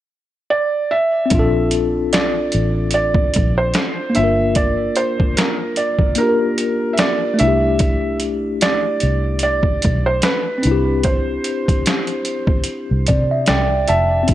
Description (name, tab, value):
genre	lo-fi hip hop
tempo	74 BPM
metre	4/4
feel	swing 57% on 16ths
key	C major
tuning	A4 = 441 Hz
part	felt-muted upright piano	melody	0.5-14.3 s	Bb4 to E5	-20 LUFS	right 2 dB	low-pass filter, analog delay
part	mellow tine electric piano	accompaniment	1.3-14.3 s	A3 to A5	-20 LUFS	left 3 dB	medium stereo tremolo, low-pass filter
part	vintage muted fingered electric bass	bass	1.3-14.3 s	F1 to C3	-20 LUFS	equal	none
part	trip hop sampler-style drum kit	drums	1.3-14.3 s	hi-hat, kick drum, snare drum	-18 LUFS	equal	overdrive
part	hollow soft pad	sustained chords	14.3 s	none	barely audible	none	none
room	light reverb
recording	none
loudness	-15 LUFS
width	side -13 dB against mid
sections	0.0-1.3 A section; 1.3-14.3 B section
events	tine electric piano fill 12.7-14.3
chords	0.0 N.C.; 1.3 Bbmaj7; 4.2 Gm7; 7.4 C6; 10.6 Cadd9